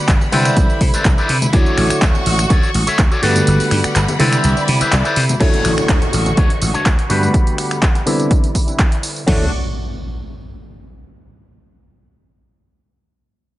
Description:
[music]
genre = filtered disco house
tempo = 124 BPM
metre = 4/4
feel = swing 53% on 16ths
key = D major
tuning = A4 = 440 Hz
[part]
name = clav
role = accompaniment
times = 0.0-9.5 s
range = D3 to F#5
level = -21 LUFS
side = equal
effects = phaser, sidechain pumping, low-pass filter
[part]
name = clear studio violin section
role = sustained chords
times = 0.0-9.5 s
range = G3 to C#6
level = -24 LUFS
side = right 1 dB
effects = sidechain pumping, low-pass filter
[part]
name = electric guitar with an envelope filter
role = riff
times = 0.0-9.5 s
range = C3 to E5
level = -22 LUFS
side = left 2 dB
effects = sidechain pumping, low-pass filter
[part]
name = vintage slap bass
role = bass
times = 0.1-9.5 s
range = G1 to C3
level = -18 LUFS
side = equal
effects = sidechain pumping, low-pass filter
[part]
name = punchy analog drum machine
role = drums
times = 0.1-9.4 s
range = crash cymbal, kick drum, snare drum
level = -14 LUFS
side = equal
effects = overdrive
[part]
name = punchy analog drum machine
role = drums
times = 0.1-9.3 s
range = finger snaps, handclaps, hi-hat, tambourine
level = -22 LUFS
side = right 1 dB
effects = overdrive, sidechain pumping on hats, sidechain pumping on perc
[part]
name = tambourine and congas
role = percussion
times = 0.1-7.3 s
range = none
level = -27 LUFS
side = left 3 dB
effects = none
[part]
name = downlifter and impact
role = sound effects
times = 5.4-11.2 s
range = none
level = -26 LUFS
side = equal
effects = none
[sound]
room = light reverb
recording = nothing above 10.8 kHz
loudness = -13 LUFS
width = side -16 dB against mid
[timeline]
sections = 0.0-5.4 A section; 5.4-9.3 B section; 9.3-11.2 C section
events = drop 0.0-5.4; kick drops out 3.5-5.4; filter sweep 5.4-9.3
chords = 0.3 Cmaj9; 1.5 Dmaj7; 3.2 Gmaj7; 4.2 Cmaj9; 5.4 Dmaj7; 7.1 Gmaj7; 8.1 Cmaj9; 9.3 Dmaj7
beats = 0.08 0.57 1.05 | 1.53 2.02 2.50 2.99 | 3.47 3.95 4.44 4.92 | 5.41 5.89 6.37 6.86 | 7.34 7.83 8.31 8.79 | 9.28 9.76 10.24 10.73

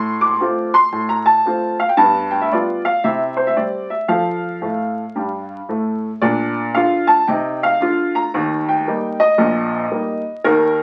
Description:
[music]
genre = jazz, stride piano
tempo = 113 BPM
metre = 4/4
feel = swing 65% on 8ths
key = F major, Bb major from 6.2 s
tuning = A4 = 440 Hz
[part]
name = clear upright piano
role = solo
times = 0.0-10.8 s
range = Bb1 to D6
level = -18 LUFS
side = equal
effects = none
[sound]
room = wet studio reverb, RT60 0.5 s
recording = very old 78 rpm record, vinyl crackle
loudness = -18 LUFS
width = mono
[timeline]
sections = 0.0-6.2 A section; 6.2-10.8 B section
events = upright piano fill 4.6-6.2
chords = 0.0 F/A; 2.0 G7; 3.0 C; 4.1 F; 6.2 Bb; 8.3 Eb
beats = 0.40 0.93 1.46 | 1.99 2.52 3.05 3.58 | 4.11 4.64 5.17 5.70 | 6.23 6.76 7.29 7.82 | 8.34 8.87 9.40 9.93 | 10.46

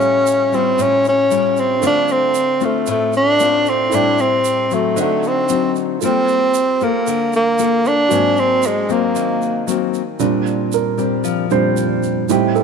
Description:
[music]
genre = bossa nova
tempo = 115 BPM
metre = 4/4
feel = straight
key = Bb major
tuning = A4 = 440 Hz
[part]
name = breathy tenor saxophone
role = melody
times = 0.0-9.7 s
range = Ab3 to D4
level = -15 LUFS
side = right 1 dB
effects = none
[part]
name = nylon-string guitar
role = accompaniment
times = 0.0-12.6 s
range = Ab2 to A4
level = -20 LUFS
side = left 11 dB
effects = none
[part]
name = warm grand piano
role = accompaniment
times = 0.0-12.6 s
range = A2 to Ab5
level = -21 LUFS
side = right 12 dB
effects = none
[part]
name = tube shaker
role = percussion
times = 0.0-12.6 s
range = none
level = -32 LUFS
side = right 16 dB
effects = none
[sound]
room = moderate plate reverb, RT60 2.8 s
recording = 1960s-style stereo with parts hard left and right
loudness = -14 LUFS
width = side -6 dB against mid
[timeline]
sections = 0.0-10.2 A section; 10.2-12.6 B section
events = grand piano solo 10.2-12.6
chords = 0.0 Aaug7; 1.8 Dm7; 3.9 Am7; 5.0 D7b9; 6.0 Gm9; 8.1 Ab9; 10.2 Bb69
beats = 0.26 0.79 1.31 | 1.83 2.35 2.88 3.40 | 3.92 4.44 4.96 5.49 | 6.01 6.53 7.06 7.58 | 8.10 8.63 9.15 9.67 | 10.20 10.72 11.24 11.77 | 12.29

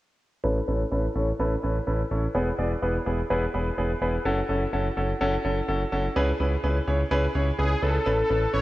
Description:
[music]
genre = pop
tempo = 126 BPM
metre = 4/4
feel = straight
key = A major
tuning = A4 = 442 Hz
[part]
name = clear grand piano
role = accompaniment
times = 0.4-8.6 s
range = B3 to D5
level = -26 LUFS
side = equal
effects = low-pass filter
[part]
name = smooth synth bass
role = bass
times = 0.4-8.6 s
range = E1 to C#2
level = -27 LUFS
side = equal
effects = none
[part]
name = wide unison lead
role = melody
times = 7.6-8.6 s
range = G#4 to C#5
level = -24 LUFS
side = left 1 dB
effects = none
[sound]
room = moderate lush hall reverb, RT60 2.6 s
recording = worn, warbling old tape, cassette tape, warbly pitch drift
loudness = -23 LUFS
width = side -17 dB against mid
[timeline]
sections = 0.4-8.1 A section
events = filter sweep on grand piano 0.4-8.1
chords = 0.4 Aadd9; 2.3 E; 4.3 F#m7; 6.2 C#m7; 8.1 Aadd9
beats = | 0.44 0.92 1.39 1.87 | 2.35 2.82 3.30 3.77 | 4.25 4.73 5.20 5.68 | 6.16 6.63 7.11 7.58 | 8.06 8.54

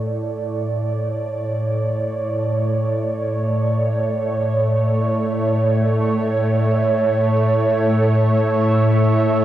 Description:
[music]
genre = ambient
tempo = free time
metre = none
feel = none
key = A major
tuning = A4 = 440 Hz
[part]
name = warm analog pad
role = sustained chords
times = 0.0-9.4 s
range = A2 to E5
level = -17 LUFS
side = right 1 dB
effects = lush chorus, cassette tape
[part]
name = bowed-like drone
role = drone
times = 0.0-9.4 s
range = A3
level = -27 LUFS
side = left 3 dB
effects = built-in reverb, cassette tape
[sound]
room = wet small room reverb, RT60 0.5 s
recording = home recording on cassette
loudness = -17 LUFS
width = side -12 dB against mid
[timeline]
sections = 0.0-9.4 A section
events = fade-in on analog synth pad 0.0-9.4; fade-in on synth drone 0.0-9.4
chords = 0.0 Aadd11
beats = free time

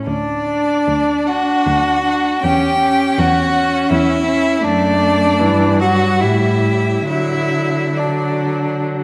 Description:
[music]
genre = classical, slow romantic movement for string quartet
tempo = 65-83 BPM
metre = 3/4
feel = rubato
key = D major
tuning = A4 = 439 Hz
[part]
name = rich viola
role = accompaniment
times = 0.0-9.0 s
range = E3 to D4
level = -22 LUFS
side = equal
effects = none
[part]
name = clear violin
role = melody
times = 0.1-8.8 s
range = D5 to G5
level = -22 LUFS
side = equal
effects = none
[part]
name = rich violin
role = second line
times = 0.1-8.8 s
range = D4 to G4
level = -21 LUFS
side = equal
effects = none
[part]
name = rich cello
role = bass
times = 0.1-9.0 s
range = D2 to D3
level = -22 LUFS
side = equal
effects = none
[sound]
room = wet scoring stage reverb, RT60 1.6 s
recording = none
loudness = -16 LUFS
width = mono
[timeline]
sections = 0.0-9.0 A section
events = none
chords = 0.1 D; 2.4 C#dim/E; 4.6 D/F#; 5.4 Em/G; 6.2 A5; 7.1 D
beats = | 0.07 0.89 1.66 | 2.43 3.17 3.90 | 4.63 5.40 6.20 | 7.07 7.97 8.84

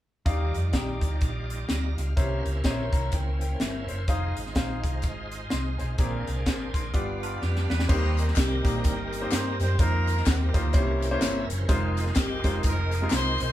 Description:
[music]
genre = uptempo gospel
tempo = 126 BPM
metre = 4/4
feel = swing 59% on 8ths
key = Eb major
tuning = A4 = 441 Hz
[part]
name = clear grand piano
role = accompaniment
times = 0.3-13.3 s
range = G2 to C6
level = -32 LUFS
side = left 1 dB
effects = none
[part]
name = bright tonewheel organ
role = sustained chords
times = 0.3-13.5 s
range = C3 to Bb5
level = -36 LUFS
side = right 2 dB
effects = slow rotary speaker, overdrive, chorus vibrato
[part]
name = fingered electric bass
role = bass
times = 0.3-13.5 s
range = F1 to G2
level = -28 LUFS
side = equal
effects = none
[part]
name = crisp fusion drum kit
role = drums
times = 0.3-13.5 s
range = crash cymbal, hi-hat, kick drum, snare drum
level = -27 LUFS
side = equal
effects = none
[part]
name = clean electric guitar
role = second line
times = 7.2-8.2 s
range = D4 to B4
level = -36 LUFS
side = right 3 dB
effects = phaser
[part]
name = tambourine and handclaps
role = percussion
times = 7.9-13.5 s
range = none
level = -39 LUFS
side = left 6 dB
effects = none
[part]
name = warm horn section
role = melody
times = 8.4-13.5 s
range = Bb3 to C5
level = -31 LUFS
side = equal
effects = none
[sound]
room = moderate studio reverb, RT60 0.6 s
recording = band playing live in one room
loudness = -24 LUFS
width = side -13 dB against mid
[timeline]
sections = 0.3-7.9 A section; 7.9-13.5 B section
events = grand piano fill 2.6-4.1; drum fill 7.4-7.9; tonewheel organ fill 10.7-11.7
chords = 0.3 Ebmaj9; 2.2 C7b9; 4.1 Fm7; 6.0 Bb9; 6.9 G7; 7.9 Eb6; 9.8 F7sus4; 10.7 C7b9; 11.7 Fm7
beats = | 0.26 0.74 1.22 1.69 | 2.17 2.65 3.12 3.60 | 4.08 4.56 5.03 5.51 | 5.99 6.46 6.94 7.42 | 7.89 8.37 8.85 9.32 | 9.80 10.27 10.75 11.22 | 11.70 12.17 12.65 13.12

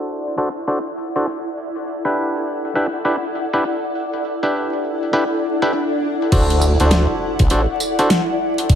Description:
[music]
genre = glitch hop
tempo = 101 BPM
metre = 4/4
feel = swing 63% on 16ths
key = unclear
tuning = A4 = 441 Hz
[part]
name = clav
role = stabs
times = 0.0-8.1 s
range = D4 to C5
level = -21 LUFS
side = equal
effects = sidechain pumping, ping-pong delay
[part]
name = granular cloud pad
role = texture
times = 0.0-8.8 s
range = E4 to F#5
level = -22 LUFS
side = left 1 dB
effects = built-in reverb, sidechain pumping
[part]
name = swell and impact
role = sound effects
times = 5.3-8.7 s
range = none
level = -26 LUFS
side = equal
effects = none
[part]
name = formant-sweep wobble bass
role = bass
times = 6.3-7.7 s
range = A1 to D2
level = -16 LUFS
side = equal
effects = chorus
[part]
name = dubstep drum kit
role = drums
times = 6.3-8.8 s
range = crash cymbal, hi-hat, snare drum, tambourine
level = -21 LUFS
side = equal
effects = studio reverb
[part]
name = electronic kick drum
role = drums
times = 6.3-8.8 s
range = none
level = -14 LUFS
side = equal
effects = studio reverb
[sound]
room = moderate lush hall reverb, RT60 1.8 s, digital ambience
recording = vinyl crackle, low-pass filter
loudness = -17 LUFS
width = side -9 dB against mid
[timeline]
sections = 0.0-6.3 A section; 6.3-8.8 B section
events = filter sweep on clav 0.0-6.3; filter sweep 0.0-6.3; swell 5.3-6.3; drop 6.3-8.8; impact 6.3-8.7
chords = 0.0 D7; 1.6 Em7; 6.3 D7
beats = 0.38 0.97 | 1.57 2.16 2.76 3.35 | 3.94 4.54 5.13 5.73 | 6.32 6.92 7.51 8.10 | 8.70

